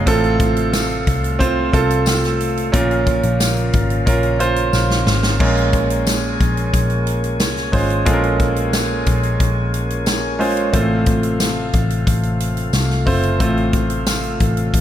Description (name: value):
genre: piano-driven pop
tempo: 90 BPM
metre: 4/4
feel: straight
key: unclear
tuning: A4 = 443 Hz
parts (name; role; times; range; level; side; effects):
- clear grand piano; accompaniment; 0.0-14.8 s; A2 to C5; -20 LUFS; right 2 dB; none
- tonewheel organ; sustained chords; 0.0-14.8 s; C3 to Ab4; -24 LUFS; left 2 dB; slow rotary speaker
- vintage muted picked electric bass; bass; 0.0-14.8 s; Gb1 to C2; -20 LUFS; left 1 dB; none
- natural country drum kit; drums; 0.1-14.8 s; crash cymbal, hi-hat, kick drum, snare drum; -20 LUFS; equal; none
- tambourine; percussion; 0.7-14.2 s; none; -30 LUFS; left 12 dB; none
room: light reverb, small room ambience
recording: none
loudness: -15 LUFS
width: side -11 dB against mid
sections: 0.0-5.4 A section; 5.4-14.8 B section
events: drum fill 4.7-5.4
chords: 0.1 F/A; 2.7 Bbm; 5.4 Bbm7; 10.7 F